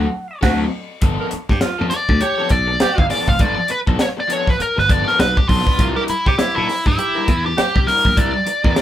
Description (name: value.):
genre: funk.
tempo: 101 BPM.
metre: 4/4.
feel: swing 60% on 16ths.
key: G mixolydian.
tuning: A4 = 440 Hz.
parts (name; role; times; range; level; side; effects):
nasal lead guitar with a parked wah; melody; 0.0-8.8 s; E4 to F#5; -19 LUFS; equal; overdrive.
raw garage guitar; accompaniment; 0.0-8.8 s; F3 to B4; -25 LUFS; left 3 dB; overdrive.
glassy slap bass; bass; 0.0-8.7 s; F1 to C3; -21 LUFS; equal; tube saturation.
breathy tenor saxophone; second line; 0.4-7.8 s; E4 to Bb4; -23 LUFS; right 4 dB; none.
tight funk drum kit; drums; 0.4-8.8 s; crash cymbal, hi-hat, kick drum, snare drum; -18 LUFS; equal; none.
room: moderate studio reverb, RT60 0.5 s.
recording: band playing live in one room.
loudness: -15 LUFS.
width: side -12 dB against mid.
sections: 0.0-1.0 A section; 1.0-8.8 B section.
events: band accent 0.0-1.0; lead electric guitar solo 1.0-8.8.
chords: 0.0 D7#9; 1.0 G9; 5.8 C9.